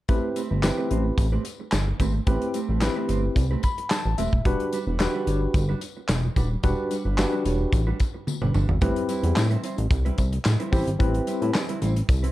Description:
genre	early-eighties boogie funk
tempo	110 BPM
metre	4/4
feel	straight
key	A minor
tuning	A4 = 440 Hz
part	bright tine electric piano	accompaniment	0.1-11.6 s	C4 to B5	-28 LUFS	left 2 dB	medium stereo tremolo
part	mellow electric guitar	riff	0.1-12.3 s	G3 to C#5	-32 LUFS	right 4 dB	wide subtle chorus
part	chorused synth bass	bass	0.1-12.3 s	D#1 to A2	-24 LUFS	equal	none
part	modern studio drum kit	drums	0.1-12.3 s	handclaps, hi-hat, kick drum, snare drum, toms	-25 LUFS	equal	none
part	tambourine	percussion	0.1-12.2 s	none	-44 LUFS	left 11 dB	none
room	little or no reverb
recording	dark, warm production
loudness	-22 LUFS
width	side -16 dB against mid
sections	0.1-8.8 A section; 8.8-12.3 B section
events	tine electric piano fill 3.4-4.5; drum fill 8.3-8.8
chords	0.1 Am9; 4.5 Em9; 8.8 Am9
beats	| 0.09 0.64 1.18 1.73 | 2.27 2.82 3.36 3.91 | 4.45 5.00 5.54 6.09 | 6.64 7.18 7.73 8.27 | 8.82 9.36 9.91 10.45 | 11.00 11.54 12.09

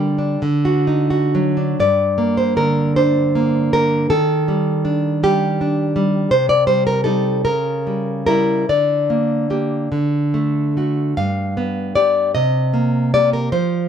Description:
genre	romantic piece for solo classical guitar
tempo	42-56 BPM (dotted quarters)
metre	6/8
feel	rubato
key	G minor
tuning	A4 = 440 Hz
part	nylon-string guitar	solo	0.0-13.9 s	G2 to F5	-15 LUFS	equal	none
room	small room ambience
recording	dry, close 1970s-style studio recording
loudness	-15 LUFS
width	side -8 dB against mid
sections	0.0-1.8 A section; 1.8-13.9 B section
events	none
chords	0.4 D; 1.8 Gm; 4.1 Ebmaj7; 6.3 Cm13; 7.4 C#dim7; 8.7 Gm/D; 9.9 D; 11.2 G7; 12.4 Cm7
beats	0.39 | 1.76 2.95 | 4.10 5.22 | 6.30 7.45 | 8.67 9.91 | 11.16 12.36 | 13.52

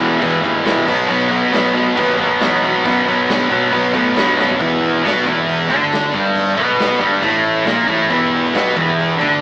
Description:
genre	garage rock duo or trio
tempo	137 BPM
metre	4/4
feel	straight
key	E minor from 4.6 s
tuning	A4 = 439 Hz
part	overdriven combo organ	sustained chords	0.0-4.6, 8.1-9.3 s	F#4 to B5	-24 LUFS	right 1 dB	none
part	thick fuzz guitar	riff	0.0-9.4 s	E2 to D4	-13 LUFS	equal	distortion
part	fuzz picked electric bass	bass	0.0-9.4 s	E1 to B2	-26 LUFS	equal	overdrive
part	raw garage drum kit	drums	0.0-9.3 s	crash cymbal, kick drum, snare drum, toms	-23 LUFS	equal	none
room	moderate stone room reverb, RT60 1.4 s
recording	rough rehearsal-room recording, tube saturation, AM radio sound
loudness	-13 LUFS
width	side -19 dB against mid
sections	0.0-4.6 A section; 4.6-9.4 B section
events	transistor combo organ fill 3.3-4.6; drum fill 4.4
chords	0.0 Em; 0.9 B; 4.6 Em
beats	0.23 0.67 | 1.10 1.54 1.98 2.42 | 2.85 3.29 3.73 4.16 | 4.60 5.04 5.48 5.91 | 6.35 6.79 7.22 7.66 | 8.10 8.54 8.98

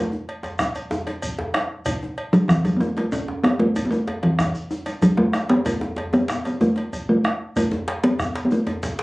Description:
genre	west african traditional, West African drum ensemble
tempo	126 BPM (dotted quarters)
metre	12/8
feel	straight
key	A major pentatonic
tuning	A4 = 440 Hz
part	talking drum	melody	0.0-9.0 s	E3 to C#4	-19 LUFS	equal	none
part	djembe	percussion	0.1-9.0 s	none	-32 LUFS	left 1 dB	none
part	cowbell	percussion	0.3-9.0 s	none	-33 LUFS	equal	none
part	djembe	percussion	0.4-9.0 s	none	-31 LUFS	equal	none
part	shekere	percussion	0.4-9.0 s	none	-37 LUFS	equal	none
part	bombo	percussion	0.6-9.0 s	none	-26 LUFS	equal	none
room	light reverb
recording	recorded on a phone in the room, club reverb, compression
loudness	-20 LUFS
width	side -22 dB against mid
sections	0.0-9.0 A section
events	none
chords	none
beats	0.43 0.91 1.38 | 1.86 2.33 2.81 3.28 | 3.76 4.23 4.71 5.18 | 5.66 6.13 6.61 7.08 | 7.56 8.03 8.51 8.98

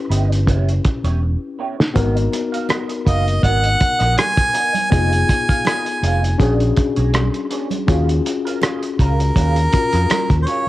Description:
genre	lush 1970s-style soul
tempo	81 BPM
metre	4/4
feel	swing 54% on 16ths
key	Eb minor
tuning	A4 = 441 Hz
part	tine electric piano	accompaniment	0.0-10.7 s	Cb4 to B4	-23 LUFS	left 5 dB	overdrive, fast stereo tremolo, tube saturation, cassette tape
part	electric guitar through a small old amp	riff	0.1-10.6 s	Gb3 to F5	-28 LUFS	right 7 dB	wah, ensemble chorus, cassette tape
part	fingered electric bass	bass	0.1-10.4 s	E1 to F2	-17 LUFS	equal	none
part	cloth-damped thuddy drum kit	drums	0.1-10.7 s	hi-hat, kick drum, rim click, snare drum	-20 LUFS	equal	cassette tape
part	congas	percussion	2.0-10.3 s	none	-30 LUFS	right 10 dB	none
part	clear harmonica	melody	3.1-10.7 s	Bb4 to Ab5	-19 LUFS	equal	cassette tape
room	small room reverb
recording	home recording on cassette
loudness	-15 LUFS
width	side -16 dB against mid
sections	0.0-10.7 A section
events	drum fill 1.2-2.0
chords	0.0 A9 (rootless); 2.0 Abm9; 4.9 Fm7b5; 6.4 Bb7alt; 7.9 Ebm11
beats	0.48 1.22 | 1.96 2.70 3.44 4.18 | 4.92 5.66 6.40 7.14 | 7.88 8.62 9.36 10.10

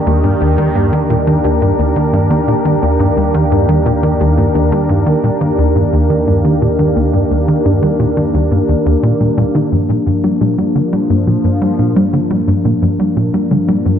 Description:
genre	ambient, sequencer-driven space music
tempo	87 BPM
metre	4/4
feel	straight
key	unclear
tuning	A4 = 440 Hz
part	sweeping resonant pad	sustained chords	0.0-14.0 s	Eb3 to Bb4	-14 LUFS	equal	chorus
part	analog drone	bass	0.0-14.0 s	Eb2 to G2	-23 LUFS	equal	chorus
part	warbly dusty pluck	arpeggios	0.1-13.9 s	F3 to Eb4	-23 LUFS	moving between left 7 dB and right 1 dB	none
part	tight sequencer bass	riff	0.1-14.0 s	Eb2 to G3	-14 LUFS	equal	ping-pong delay
room	moderate plate reverb, RT60 2.7 s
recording	dark, warm production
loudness	-11 LUFS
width	side -8 dB against mid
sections	0.0-14.0 A section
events	none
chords	0.0 Ebmaj7; 9.7 Gm7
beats	0.07 0.76 | 1.45 2.13 2.83 3.51 | 4.20 4.89 5.58 6.27 | 6.96 7.65 8.34 9.03 | 9.72 10.41 11.10 11.79 | 12.48 13.17 13.86

